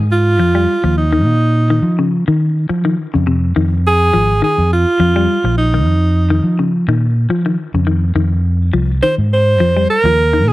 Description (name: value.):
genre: afrobeat.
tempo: 104 BPM.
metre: 4/4.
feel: swing 56% on 16ths.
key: F minor.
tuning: A4 = 440 Hz.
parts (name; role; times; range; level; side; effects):
semi-hollow electric guitar; arpeggios; 0.0-10.5 s; C3 to G3; -19 LUFS; left 5 dB; spring reverb.
fingered electric bass; bass; 0.0-10.5 s; Ab1 to F3; -14 LUFS; equal; none.
edgy alto saxophone; melody; 0.1-10.5 s; Eb4 to C5; -15 LUFS; right 2 dB; none.
room: studio ambience.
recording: dry, close 1970s-style studio recording.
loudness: -12 LUFS.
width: side -17 dB against mid.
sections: 0.0-10.5 A section.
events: none.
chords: 0.0 F7sus4; 3.6 Db69 (rootless); 8.2 Fm11.